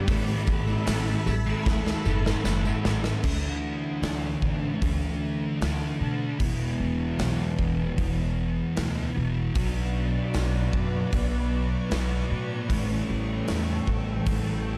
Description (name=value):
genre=rock, shoegaze and dream pop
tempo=76 BPM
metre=4/4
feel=straight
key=unclear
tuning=A4 = 438 Hz
part: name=soft additive organ-like pad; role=sustained chords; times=0.0-3.2, 10.0-14.8 s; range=A4 to C#6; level=-40 LUFS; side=equal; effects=ensemble chorus, built-in reverb
part: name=overdriven semi-hollow guitar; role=riff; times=0.0-14.8 s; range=A2 to A4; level=-36 LUFS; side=equal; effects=reverse reverb
part: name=thick fuzz guitar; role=riff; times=0.0-14.8 s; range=E2 to D4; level=-31 LUFS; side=equal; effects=distortion, analog chorus
part: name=upright bass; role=bass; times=0.1-14.8 s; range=E1 to B2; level=-32 LUFS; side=equal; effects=none
part: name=gated 80s drum kit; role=drums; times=0.1-14.5 s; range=crash cymbal, hi-hat, kick drum, snare drum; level=-32 LUFS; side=equal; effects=none
part: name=tambourine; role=percussion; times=0.1-3.1 s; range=none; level=-49 LUFS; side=equal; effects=none
room=small room ambience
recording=dark, warm production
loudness=-27 LUFS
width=mono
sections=0.0-3.2 A section; 3.2-14.8 B section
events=drum fill 1.7-3.2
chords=0.1 Asus2; 3.2 Dsus2; 6.4 E; 9.6 Bmadd9; 12.7 A7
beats=| 0.08 0.87 1.66 2.45 | 3.24 4.03 4.82 5.61 | 6.40 7.19 7.98 8.76 | 9.55 10.34 11.12 11.91 | 12.70 13.48 14.27